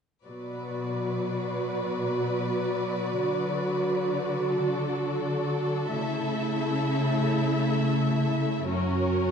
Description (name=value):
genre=cinematic, emotional film score for orchestra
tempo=42 BPM (dotted quarters)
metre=6/8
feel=rubato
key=B minor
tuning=A4 = 436 Hz
part: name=rich symphonic violin section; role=second line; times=0.3-9.3 s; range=A4 to E5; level=-32 LUFS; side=left 2 dB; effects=none
part: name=warm symphonic viola section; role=accompaniment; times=0.3-9.3 s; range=F#3 to F#4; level=-28 LUFS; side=right 1 dB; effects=none
part: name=rich symphonic cello section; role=bass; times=0.3-9.3 s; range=F#2 to D3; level=-30 LUFS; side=left 1 dB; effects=none
room=wet concert hall reverb, RT60 1.8 s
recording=dark, warm production, nothing above 10.8 kHz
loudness=-25 LUFS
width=side -6 dB against mid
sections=0.3-9.3 A section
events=none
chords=0.3 Bm; 3.1 D; 5.9 A/C#; 8.7 F#